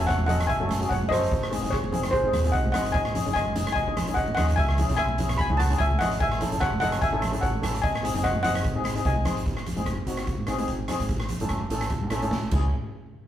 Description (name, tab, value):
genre	calypso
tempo	147 BPM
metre	4/4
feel	swing 54% on 16ths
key	unclear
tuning	A4 = 440 Hz
part	steel pan	melody	0.0-9.3 s	G#4 to B5	-26 LUFS	left 1 dB	none
part	steel pan	accompaniment	0.0-12.7 s	B#3 to A4	-31 LUFS	left 1 dB	none
part	deep dub fingered electric bass	bass	0.0-12.7 s	E1 to A2	-28 LUFS	equal	none
part	street-band drum kit	drums	0.0-12.6 s	crash cymbal, hi-hat, kick drum, rim click, snare drum	-29 LUFS	equal	none
part	congas	percussion	0.2-12.7 s	none	-34 LUFS	right 1 dB	none
room	wet studio reverb, RT60 0.6 s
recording	rough rehearsal-room recording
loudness	-23 LUFS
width	side -11 dB against mid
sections	0.0-9.5 A section; 9.5-12.7 B section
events	drum fill 12.3-12.7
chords	0.0 F#m7; 1.3 G#; 2.9 G#sus4; 4.6 C#m7; 6.2 A; 7.8 G#7; 11.1 A; 12.5 C#m; 12.7 N.C.